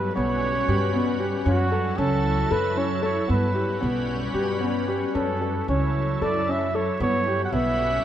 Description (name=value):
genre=contemporary instrumental, chamber music in an uneven meter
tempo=228 BPM (eighths)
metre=7/8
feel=straight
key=unclear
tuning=A4 = 440 Hz
part: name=warm flugelhorn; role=melody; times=0.0-8.0 s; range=F#4 to F#5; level=-27 LUFS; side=right 3 dB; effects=none
part: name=soft additive organ-like pad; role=sustained chords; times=0.0-8.0 s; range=F#3 to B4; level=-28 LUFS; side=left 2 dB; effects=ensemble chorus, built-in reverb
part: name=felt-muted upright piano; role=arpeggios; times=0.0-7.9 s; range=B3 to A4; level=-27 LUFS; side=left 2 dB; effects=none
part: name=upright bass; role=bass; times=0.0-8.0 s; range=B1 to G2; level=-27 LUFS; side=right 1 dB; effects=none
room=moderate concert hall reverb, RT60 2.1 s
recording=close, detailed microphones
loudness=-21 LUFS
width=side -10 dB against mid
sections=0.0-8.0 A section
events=none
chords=0.0 Gmaj7#11/B; 1.5 F#m7; 3.3 Gmaj7#11/B; 5.2 F#m7; 7.0 Em69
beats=0.17 0.43 0.69 0.95 1.21 | 1.47 1.73 1.99 2.25 2.51 2.77 3.04 | 3.30 3.56 3.82 4.09 4.35 4.62 4.89 | 5.16 5.42 5.69 5.96 6.22 6.49 6.75 | 7.01 7.28 7.54 7.80